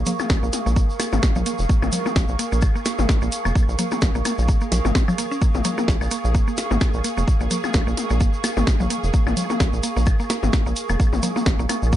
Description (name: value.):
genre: minimal techno.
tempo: 129 BPM.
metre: 4/4.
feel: swing 56% on 16ths.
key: Bb minor.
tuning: A4 = 440 Hz.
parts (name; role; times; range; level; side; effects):
rubbery square bass; bass; 0.0-12.0 s; F1 to Bb1; -22 LUFS; equal; sidechain pumping.
airy breathy pad; texture; 0.0-12.0 s; Bb4 to Db6; -30 LUFS; right 3 dB; chorus, sidechain pumping.
swarming drone; texture; 0.0-12.0 s; Ab4; -34 LUFS; right 3 dB; built-in reverb, sidechain pumping.
mallet-like synth pluck; riff; 0.1-12.0 s; F3 to Db4; -29 LUFS; right 1 dB; chorus, sidechain pumping, digital delay.
house drum kit; drums; 0.1-11.8 s; hi-hat, snare drum; -26 LUFS; equal; none.
electronic congas, toms and woodblock; percussion; 0.1-11.8 s; none; -27 LUFS; left 5 dB; digital delay.
tube shaker; percussion; 0.1-12.0 s; none; -34 LUFS; equal; none.
electronic kick drum; drums; 0.3-12.0 s; none; -20 LUFS; equal; none.
room: little or no reverb.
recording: nothing above 10.7 kHz.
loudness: -18 LUFS.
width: side -12 dB against mid.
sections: 0.0-12.0 A section.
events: none.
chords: 0.0 Bbm7.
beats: 0.30 0.76 1.23 | 1.70 2.16 2.62 3.09 | 3.56 4.02 4.49 4.95 | 5.42 5.88 6.35 6.81 | 7.28 7.74 8.21 8.67 | 9.14 9.60 10.07 10.53 | 11.00 11.46 11.93.